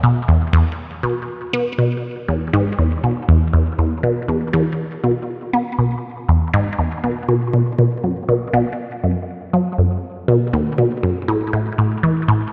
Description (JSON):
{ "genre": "ambient", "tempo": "120 BPM", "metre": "4/4", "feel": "straight", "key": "E major", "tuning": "A4 = 435 Hz", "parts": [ { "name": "resonant blip pluck", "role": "solo", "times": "0.0-12.5 s", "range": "D#2 to B3", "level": "-19 LUFS", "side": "equal", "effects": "phaser, tape echo" } ], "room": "moderate lush hall reverb, RT60 3.4 s", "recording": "none", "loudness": "-19 LUFS", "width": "mono", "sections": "0.0-12.5 A section", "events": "none", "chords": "none", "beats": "0.28 0.79 | 1.28 1.78 2.29 2.79 | 3.29 3.79 4.29 4.79 | 5.29 5.79 6.29 6.79 | 7.29 7.79 8.29 8.79 | 9.29 9.79 10.29 10.79 | 11.29 11.79 12.29" }